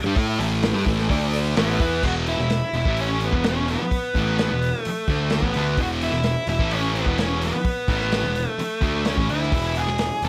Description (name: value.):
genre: garage rock duo or trio.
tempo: 128 BPM.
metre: 4/4.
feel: straight.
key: E mixolydian.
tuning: A4 = 440 Hz.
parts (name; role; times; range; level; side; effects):
fuzz picked electric bass; bass; 0.0-10.3 s; E1 to A2; -29 LUFS; equal; overdrive.
thick fuzz guitar; riff; 0.1-10.3 s; E2 to A4; -27 LUFS; equal; distortion.
combo organ; sustained chords; 0.2-1.9, 9.5-10.3 s; D4 to E5; -36 LUFS; equal; none.
vintage drum kit; drums; 0.2-10.3 s; crash cymbal, hi-hat, kick drum, snare drum; -29 LUFS; equal; none.
octave-fuzz lead guitar; melody; 1.6-10.3 s; B3 to A4; -28 LUFS; equal; distortion.
room: light reverb.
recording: none.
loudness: -22 LUFS.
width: mono.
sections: 0.0-2.0 A section; 2.0-10.3 B section.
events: none.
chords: 0.0 A5; 1.1 D5; 1.6 A5; 2.0 E5; 2.9 A5; 3.3 E5; 6.6 A5; 7.1 E.